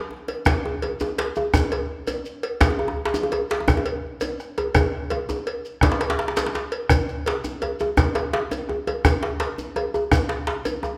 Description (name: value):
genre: west african traditional, West African drum ensemble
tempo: 112 BPM (dotted quarters)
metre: 12/8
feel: straight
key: none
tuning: none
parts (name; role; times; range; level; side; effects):
- djembe; percussion; 0.1-10.8 s; none; -31 LUFS; equal; none
- cowbell; percussion; 0.3-10.8 s; none; -32 LUFS; equal; none
- bombo; percussion; 0.5-10.9 s; none; -25 LUFS; equal; none
- djembe; percussion; 0.5-11.0 s; none; -28 LUFS; equal; none
- shekere; percussion; 0.5-10.9 s; none; -34 LUFS; equal; none
room: moderate recital hall reverb, RT60 1.4 s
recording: none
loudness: -24 LUFS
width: mono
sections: 0.5-11.0 A section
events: drum fill 0.0-0.5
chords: none